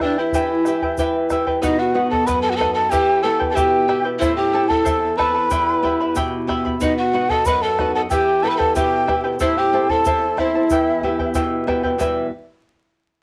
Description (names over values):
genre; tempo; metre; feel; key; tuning
andean folk, Andean ensemble; 93 BPM; 2/4; straight; E harmonic minor; A4 = 440 Hz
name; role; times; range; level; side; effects
breathy bright large quena; melody; 0.0-11.4 s; D5 to B5; -23 LUFS; equal; cassette tape
breathy pan flute; second line; 0.0-11.4 s; D4 to B4; -25 LUFS; equal; cassette tape, analog delay
charango; accompaniment; 0.0-12.3 s; E4 to B5; -25 LUFS; equal; cassette tape
flamenco guitar; accompaniment; 0.0-12.3 s; E2 to E5; -27 LUFS; equal; cassette tape
bombo; percussion; 0.0-12.3 s; none; -30 LUFS; equal; none
egg shaker; percussion; 0.3-12.3 s; none; -40 LUFS; equal; none
room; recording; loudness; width
wet studio reverb, RT60 0.6 s; home recording on cassette, vinyl crackle; -19 LUFS; mono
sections
0.0-1.6 A section; 1.6-12.0 B section; 12.0-13.2 C section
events
none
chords
0.0 Em; 1.6 B; 2.9 Em; 4.2 Am; 5.5 Em; 6.8 B; 8.1 Em; 9.4 Am; 10.7 Em